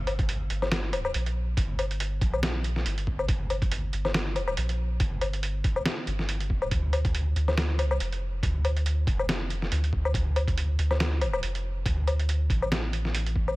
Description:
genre	deep dubstep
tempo	140 BPM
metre	4/4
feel	swing 56% on 16ths, half-time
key	unclear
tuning	A4 = 445 Hz
part	soft dub sub bass	bass	0.0-13.6 s	F1 to D2	-28 LUFS	equal	none
part	trip hop sampler-style drum kit	drums	0.1-13.6 s	hi-hat, snare drum, woodblock	-30 LUFS	left 1 dB	none
part	electronic kick drum	drums	0.2-13.5 s	none	-28 LUFS	equal	none
room	little or no reverb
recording	none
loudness	-25 LUFS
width	side -20 dB against mid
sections	0.0-13.6 A section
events	drop 0.0-13.6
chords	none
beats	0.29 0.71 1.14 | 1.57 2.00 2.43 2.86 | 3.29 3.71 4.14 4.57 | 5.00 5.43 5.86 6.29 | 6.71 7.14 7.57 8.00 | 8.43 8.86 9.29 9.71 | 10.14 10.57 11.00 11.43 | 11.86 12.29 12.71 13.14

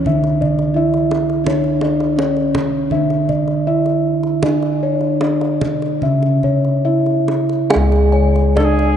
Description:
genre	Javanese gamelan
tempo	70-85 BPM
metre	4/4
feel	straight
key	unclear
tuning	A4 = 440 Hz
part	gamelan-type bronze metallophone	melody	0.0-9.0 s	C#4 to G#4	-19 LUFS	equal	none
part	gamelan-type bronze metallophone	accompaniment	0.0-9.0 s	C#3 to G#3	-20 LUFS	right 4 dB	none
part	gamelan-type bossed gongs	bass	0.0-9.0 s	C#2 to G#4	-20 LUFS	left 1 dB	none
part	gamelan-type bossed gongs	arpeggios	0.1-9.0 s	C#5 to E5	-21 LUFS	left 3 dB	none
part	kendang	percussion	0.1-8.9 s	none	-26 LUFS	right 3 dB	none
part	gamelan-type bronze metallophone	arpeggios	7.7-9.0 s	D5+35c to G#5	-24 LUFS	right 4 dB	none
part	reedy alto recorder	second line	8.6-9.0 s	G#4 to A4	-20 LUFS	equal	none
room	moderate cathedral reverb, RT60 5.4 s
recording	in a vast, echoing space, nothing above 10.4 kHz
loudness	-14 LUFS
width	side -9 dB against mid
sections	0.0-7.7 A section; 7.7-9.0 B section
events	none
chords	none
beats	0.06 0.77 | 1.48 2.19 2.92 3.67 | 4.43 5.22 6.03 6.85 | 7.70 8.56

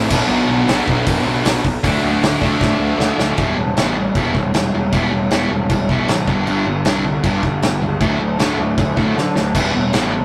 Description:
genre	punk rock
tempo	156 BPM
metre	4/4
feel	straight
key	E minor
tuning	A4 = 437 Hz
part	distorted electric guitar	riff	0.0-3.4, 9.5-10.2 s	E2 to D4	-26 LUFS	equal	none
part	distorted electric guitar	riff	0.0-3.4 s	B2 to D4	-28 LUFS	equal	none
part	sludgy distorted guitar	riff	0.0-10.2 s	G2 to D4	-21 LUFS	equal	overdrive
part	fuzz picked electric bass	bass	0.0-10.2 s	E1 to D3	-24 LUFS	equal	overdrive
part	loose indie drum kit	drums	0.1-10.0 s	crash cymbal, hi-hat, kick drum, snare drum	-22 LUFS	equal	none
room	moderate stone room reverb, RT60 1.3 s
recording	rough rehearsal-room recording, tube saturation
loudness	-17 LUFS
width	mono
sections	0.0-3.4 A section; 3.4-10.2 B section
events	drum fill 2.6-3.4, 9.2-9.5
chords	0.1 Bm; 1.8 D; 3.4 Em; 6.3 G5; 8.0 D; 9.5 Em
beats	| 0.30 0.69 1.07 1.46 | 1.84 2.23 2.61 3.00 | 3.38 3.77 4.15 4.54 | 4.92 5.31 5.69 6.08 | 6.46 6.85 7.24 7.62 | 8.01 8.39 8.78 9.16 | 9.55 9.93

